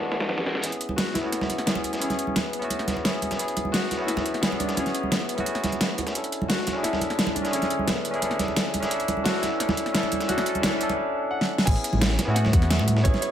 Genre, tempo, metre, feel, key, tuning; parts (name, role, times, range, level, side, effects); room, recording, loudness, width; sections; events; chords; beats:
liquid drum and bass; 174 BPM; 4/4; straight; A major; A4 = 436 Hz
warm grand piano; melody; 0.0-13.3 s; B3 to A5; -31 LUFS; left 2 dB; ping-pong delay
barky tine electric piano; accompaniment; 0.0-13.3 s; D3 to A4; -28 LUFS; equal; overdrive, ping-pong delay
dusty soul sampler-style drum kit; drums; 0.0-13.3 s; hi-hat, snare drum; -31 LUFS; right 1 dB; overdrive, high-pass filter on hats, low-pass filter on hats, high-pass filter on snare, low-pass filter on snare
dark detuned saw bass; bass; 0.6-13.1 s; E1 to A2; -29 LUFS; equal
pop drum kit; drums; 0.6-13.3 s; crash cymbal, hi-hat, snare drum; -28 LUFS; equal
congas; percussion; 0.9-13.2 s; -31 LUFS; right 3 dB
electronic kick drum; drums; 11.7-13.1 s; -21 LUFS; equal; overdrive
moderate digital room reverb, RT60 1.3 s, digital ambience; -22 LUFS; side -10 dB against mid
0.6-11.7 A section; 11.7-13.3 B section
build-up 0.6-11.7; drum fill 11.4; drop 11.7-13.3
0.0 E7sus4; 0.6 Amaj9; 6.2 Bm11; 8.9 E7sus4; 11.7 Amaj9
0.29 | 0.64 0.98 1.32 1.67 | 2.02 2.36 2.71 3.05 | 3.39 3.74 4.08 4.43 | 4.77 5.12 5.46 5.81 | 6.15 6.50 6.84 7.19 | 7.53 7.88 8.22 8.57 | 8.91 9.26 9.60 9.95 | 10.29 10.64 10.98 11.32 | 11.67 12.02 12.36 12.71 | 13.05